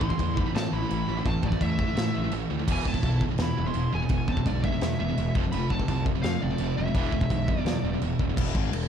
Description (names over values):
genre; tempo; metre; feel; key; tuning
heavy metal; 169 BPM; 4/4; straight; E phrygian dominant; A4 = 440 Hz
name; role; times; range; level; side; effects
smooth overdriven lead guitar; melody; 0.0-8.0 s; D5 to C6; -35 LUFS; equal; tape echo
high-gain lead guitar; second line; 0.0-8.0 s; F3 to F4; -36 LUFS; right 2 dB; distortion
high-gain distorted guitar; riff; 0.0-8.4 s; E2 to F3; -31 LUFS; right 10 dB; distortion
sludgy distorted guitar; riff; 0.0-8.9 s; E2 to G#3; -32 LUFS; left 10 dB; overdrive
fuzz picked electric bass; bass; 0.0-8.9 s; E1 to A2; -30 LUFS; equal; overdrive
modern studio drum kit; drums; 0.0-8.8 s; china cymbal, crash cymbal, kick drum, snare drum; -29 LUFS; equal; none
room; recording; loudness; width
small room reverb; dark, warm production; -24 LUFS; side -8 dB against mid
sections
0.0-8.4 A section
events
drum fill 8.2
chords
0.0 Am; 2.7 E; 5.4 F; 7.0 E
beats
0.19 0.55 0.90 | 1.26 1.61 1.97 2.33 | 2.68 3.04 3.40 3.75 | 4.11 4.46 4.82 5.17 | 5.53 5.89 6.24 6.60 | 6.95 7.31 7.66 8.02 | 8.37 8.73